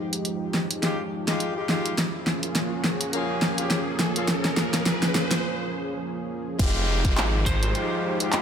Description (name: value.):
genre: glitch hop.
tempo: 104 BPM.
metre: 4/4.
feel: swing 57% on 16ths.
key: F minor.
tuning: A4 = 440 Hz.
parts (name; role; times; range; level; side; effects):
warm analog pad; sustained chords; 0.0-8.4 s; F3 to Ab4; -30 LUFS; right 2 dB; chorus, sidechain pumping.
riser and downlifter; sound effects; 0.1-8.4 s; none; -33 LUFS; equal; none.
pop drum kit; drums; 0.1-8.4 s; crash cymbal, handclaps, hi-hat, snare drum, tambourine; -25 LUFS; equal; none.
warm horn section; stabs; 0.8-8.4 s; Ab3 to Ab4; -31 LUFS; left 2 dB; sidechain pumping, digital delay.
phased detuned saw bass; bass; 6.6-7.7 s; F1 to Ab1; -25 LUFS; equal; phaser.
electronic kick drum; drums; 6.6-7.6 s; none; -24 LUFS; equal; none.
lightly driven lead guitar; melody; 7.5-8.3 s; C5; -31 LUFS; equal; digital delay.
room: light reverb, digital ambience.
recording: none.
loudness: -23 LUFS.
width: side -8 dB against mid.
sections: 0.0-6.6 A section; 6.6-8.4 B section.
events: build-up 0.0-6.6; drum fill 0.0-5.4; riser 0.1-5.4; break 5.4-6.6; drop 6.6-8.4.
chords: 0.0 Fm9; 2.0 Bbm7; 6.6 Fm9.